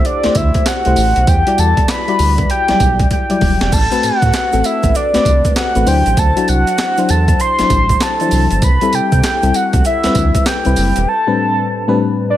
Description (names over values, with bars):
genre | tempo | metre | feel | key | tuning
R&B, new jack swing | 98 BPM | 4/4 | swing 63% on 16ths | A dorian | A4 = 440 Hz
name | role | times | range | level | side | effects
soft octave-layered synth lead | melody | 0.0-12.4 s | D5 to C6 | -16 LUFS | equal | chorus
FM electric piano with tremolo | accompaniment | 0.0-12.3 s | A2 to D5 | -18 LUFS | left 4 dB | none
round analog bass | bass | 0.0-11.1 s | E1 to C3 | -15 LUFS | right 1 dB | none
breakbeat sampler-style drum kit | drums | 0.0-11.1 s | crash cymbal, handclaps, hi-hat, kick drum, snare drum, tambourine | -17 LUFS | right 1 dB | overdrive
tube shaker | percussion | 3.7-11.1 s | none | -32 LUFS | right 13 dB | none
room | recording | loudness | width
light reverb | none | -11 LUFS | side -12 dB against mid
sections
0.0-12.4 A section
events
drum fill 3.1-3.7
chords
0.0 C6; 1.3 Em9; 3.7 Am69; 5.9 D9; 8.6 C6; 11.1 Am11